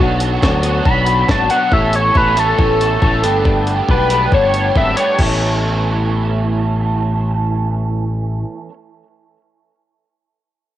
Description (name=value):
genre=indie rock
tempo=138 BPM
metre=4/4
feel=straight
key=A mixolydian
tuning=A4 = 440 Hz
part: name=clean electric guitar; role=riff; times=0.0-8.7 s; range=B2 to C#5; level=-23 LUFS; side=left 7 dB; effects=cassette tape
part: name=crunchy overdriven guitar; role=riff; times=0.0-8.7 s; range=E3 to A4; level=-21 LUFS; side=right 6 dB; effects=ensemble chorus, cassette tape, tape echo
part: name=modern bright picked electric bass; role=bass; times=0.0-8.4 s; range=G1 to D2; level=-18 LUFS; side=equal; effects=none
part: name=jungle sampler-style drum kit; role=drums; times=0.2-5.3 s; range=crash cymbal, hi-hat, kick drum, snare drum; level=-18 LUFS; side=equal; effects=cassette tape
part: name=overdriven synth lead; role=melody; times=0.9-5.2 s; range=A4 to B5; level=-16 LUFS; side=left 1 dB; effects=phaser, cassette tape, tape echo
room=light reverb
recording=home recording on cassette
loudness=-13 LUFS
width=side -12 dB against mid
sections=0.0-5.2 A section; 5.2-8.7 B section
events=analog synth lead solo 0.0-5.2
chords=0.0 Bmadd9; 1.7 Aadd9; 3.2 Gadd9; 5.2 Aadd9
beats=0.42 0.85 1.28 | 1.72 2.15 2.58 3.02 | 3.45 3.88 4.32 4.75 | 5.19 5.62 6.05 6.49 | 6.92 7.36 7.79 8.23